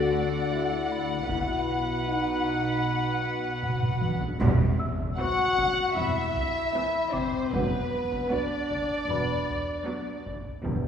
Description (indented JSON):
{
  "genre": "cinematic, suspense film score",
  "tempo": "77 BPM",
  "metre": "4/4",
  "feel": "straight",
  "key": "unclear",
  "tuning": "A4 = 438 Hz",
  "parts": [
    { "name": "dark studio violin section", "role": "melody", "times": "0.0-10.2 s", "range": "B4 to F#5", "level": "-32 LUFS", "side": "left 2 dB", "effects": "none" },
    { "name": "dark studio violin section", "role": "second line", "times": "0.0-10.3 s", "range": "B4 to F#5", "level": "-33 LUFS", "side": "equal", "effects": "none" },
    { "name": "rich symphonic viola section", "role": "accompaniment", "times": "0.0-10.4 s", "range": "E3 to B4", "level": "-35 LUFS", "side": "left 1 dB", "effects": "none" },
    { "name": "dark French horn section", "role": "sustained chords", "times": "0.0-10.9 s", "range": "F#3 to F#4", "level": "-32 LUFS", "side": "left 2 dB", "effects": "none" },
    { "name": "dark symphonic double bass section", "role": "bass", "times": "0.0-10.9 s", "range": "E1 to D2", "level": "-32 LUFS", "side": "right 3 dB", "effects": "none" },
    { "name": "warm symphonic cello section", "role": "bass", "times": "0.0-10.9 s", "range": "E2 to D3", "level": "-34 LUFS", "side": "equal", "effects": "none" },
    { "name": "small celesta", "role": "texture", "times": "0.9-10.9 s", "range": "B4 to E6", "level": "-40 LUFS", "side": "equal", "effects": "none" },
    { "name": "taiko ensemble", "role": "drums", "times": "1.3-10.9 s", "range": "none", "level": "-33 LUFS", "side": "equal", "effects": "none" },
    { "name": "timpani", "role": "percussion", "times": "4.4-5.5 s", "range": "E2", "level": "-32 LUFS", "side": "left 1 dB", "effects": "none" },
    { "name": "impact", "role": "sound effects", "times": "4.4-7.5 s", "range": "none", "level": "-37 LUFS", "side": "equal", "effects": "none" },
    { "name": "dark clarinet", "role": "second line", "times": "5.2-10.2 s", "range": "B3 to F#4", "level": "-30 LUFS", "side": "left 2 dB", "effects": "none" }
  ],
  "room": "wet scoring stage reverb, RT60 1.8 s",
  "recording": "heard from further back in the room, small room reverb",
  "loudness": "-25 LUFS",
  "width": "side -8 dB against mid",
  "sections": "0.0-4.4 A section; 4.4-10.9 B section",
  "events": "drum fill 3.6-4.4; band accent 4.4-5.2; impact 4.4-7.5",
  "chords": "0.0 D; 1.3 B; 4.4 C/E; 7.5 Bm/E"
}